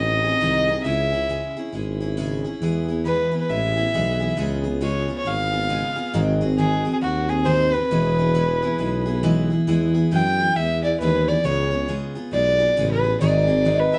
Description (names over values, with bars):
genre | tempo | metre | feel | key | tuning
honky-tonk and classic country | 136 BPM | 4/4 | swing 62% on 8ths | E major | A4 = 439 Hz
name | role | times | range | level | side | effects
dark fiddle | melody | 0.0-14.0 s | F#4 to G5 | -24 LUFS | equal | none
picked steel-string acoustic guitar | accompaniment | 0.0-14.0 s | G#2 to G#4 | -26 LUFS | equal | none
warm tuba | bass | 0.0-14.0 s | E1 to F#2 | -27 LUFS | equal | none
room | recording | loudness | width
moderate small room reverb, RT60 0.5 s | heard from further back in the room, nothing above 10.5 kHz | -21 LUFS | mono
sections
0.0-9.7 A section; 9.7-14.0 B section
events
fiddle solo 9.7-14.0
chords
0.0 G#7; 0.8 C#m; 2.6 E; 4.4 C#7; 6.1 G#7; 7.9 E; 11.4 C#7; 13.2 G#7